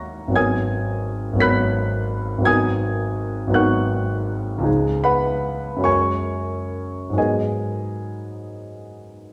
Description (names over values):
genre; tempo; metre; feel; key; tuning
classical, impressionist solo piano; 44-59 BPM (dotted quarters); 6/8; rubato; G# dorian; A4 = 440 Hz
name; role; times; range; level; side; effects
clear concert grand piano; solo; 0.0-9.3 s; G#1 to B6; -22 LUFS; equal; none
room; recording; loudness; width
wet recital hall reverb, RT60 1.4 s; recorded in a church or concert hall; -21 LUFS; mono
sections
0.0-9.3 A section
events
none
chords
0.4 G#m11; 4.7 C#9; 5.9 F#add9; 7.2 G#m9